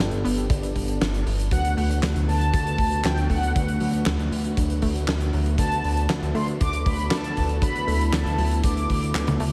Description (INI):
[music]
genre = synthwave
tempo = 118 BPM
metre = 4/4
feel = straight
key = unclear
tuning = A4 = 441 Hz
[part]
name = mellow synth brass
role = melody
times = 0.0-9.4 s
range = F#5 to D6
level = -31 LUFS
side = equal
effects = chorus, delay, slapback echo
[part]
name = warm analog pad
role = sustained chords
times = 0.0-9.5 s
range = D3 to A4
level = -36 LUFS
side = equal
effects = chorus, phaser, sidechain pumping
[part]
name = unison pluck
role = arpeggios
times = 0.0-9.5 s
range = D3 to B3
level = -36 LUFS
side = equal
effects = none
[part]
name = mellow synth brass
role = stabs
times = 0.0-9.4 s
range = A3 to D5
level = -33 LUFS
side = equal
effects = chorus, digital delay, slapback echo
[part]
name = chorused synth bass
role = bass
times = 0.0-9.5 s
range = G1 to D2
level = -27 LUFS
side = equal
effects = sidechain pumping
[part]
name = big rock drum kit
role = drums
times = 0.1-9.5 s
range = handclaps, hi-hat, snare drum, toms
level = -32 LUFS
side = equal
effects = none
[part]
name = kick drum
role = drums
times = 0.5-9.0 s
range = none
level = -29 LUFS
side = equal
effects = none
[sound]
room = moderate lush hall reverb, RT60 2.0 s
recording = big arena sound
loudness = -23 LUFS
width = mono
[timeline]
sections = 0.0-9.5 A section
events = drum fill 9.1-9.5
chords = 0.0 G; 1.5 D6; 5.6 Bm7/D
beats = 0.50 1.01 | 1.52 2.03 2.54 3.05 | 3.55 4.06 4.57 5.08 | 5.59 6.10 6.61 7.11 | 7.62 8.13 8.64 9.15